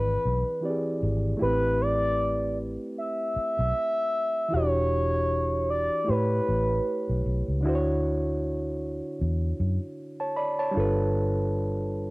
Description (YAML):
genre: R&B, neo-soul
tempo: 77 BPM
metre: 4/4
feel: swing 57% on 16ths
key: unclear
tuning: A4 = 438 Hz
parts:
  - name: expressive synth lead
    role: melody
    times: 0.0-7.3 s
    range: B4 to E5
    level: -27 LUFS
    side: equal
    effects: chorus, cassette tape
  - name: reed electric piano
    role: accompaniment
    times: 0.0-12.1 s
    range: D3 to B5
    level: -29 LUFS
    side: right 1 dB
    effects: none
  - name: vintage muted fingered electric bass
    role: bass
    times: 0.0-12.1 s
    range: E1 to A2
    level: -28 LUFS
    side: equal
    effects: none
room: little or no reverb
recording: home recording on cassette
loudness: -24 LUFS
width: side -23 dB against mid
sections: 0.0-12.1 A section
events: none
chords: 0.0 E7b13; 1.4 Am9; 4.5 Em7; 6.1 A9; 7.6 Dmaj7; 10.8 G7